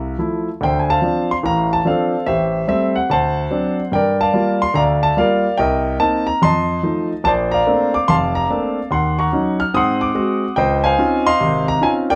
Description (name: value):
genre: solo jazz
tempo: 145 BPM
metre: 4/4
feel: swing 66% on 8ths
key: unclear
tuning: A4 = 440 Hz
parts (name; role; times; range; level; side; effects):
- warm concert grand piano; solo; 0.0-12.2 s; F1 to F6; -18 LUFS; equal; none
room: light reverb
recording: none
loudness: -17 LUFS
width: mono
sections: 0.6-12.2 A section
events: none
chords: 0.0 Fmaj7; 0.6 Dm7; 2.3 Am7; 3.1 D7; 3.9 Gm7; 5.6 Cm7; 6.4 F7; 7.2 Bbmaj9; 8.9 Ebm7; 9.7 Ab7; 10.6 Dbmaj9